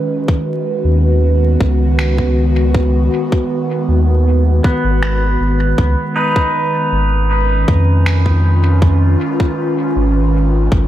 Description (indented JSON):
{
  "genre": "ambient dub",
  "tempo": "79 BPM",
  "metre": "4/4",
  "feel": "straight",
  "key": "G# dorian",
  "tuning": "A4 = 440 Hz",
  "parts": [
    { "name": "airy breathy pad", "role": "sustained chords", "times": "0.0-10.9 s", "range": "D#3 to B4", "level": "-17 LUFS", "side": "right 1 dB", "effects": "chorus" },
    { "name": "electronic kick drum", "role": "drums", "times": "0.3-10.9 s", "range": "none", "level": "-16 LUFS", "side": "equal", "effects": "overdrive" },
    { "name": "soft dub sub bass", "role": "bass", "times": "0.8-10.9 s", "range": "G#1 to E#2", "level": "-13 LUFS", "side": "equal", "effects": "none" },
    { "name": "electronic finger snaps", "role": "drums", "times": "2.0-8.2 s", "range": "none", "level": "-26 LUFS", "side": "equal", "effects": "dub echo" },
    { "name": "pedal steel guitar", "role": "arpeggios", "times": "4.6-8.3 s", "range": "B3 to B4", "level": "-20 LUFS", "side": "equal", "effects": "low-pass filter, tape echo" }
  ],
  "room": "light reverb, digital ambience",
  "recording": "vinyl crackle",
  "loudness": "-12 LUFS",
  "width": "side -13 dB against mid",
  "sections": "0.0-10.9 A section",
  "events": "none",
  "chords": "0.0 G#m7; 5.8 C#9",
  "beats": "0.47 1.23 1.99 | 2.75 3.50 4.26 5.02 | 5.78 6.54 7.30 8.06 | 8.82 9.58 10.34"
}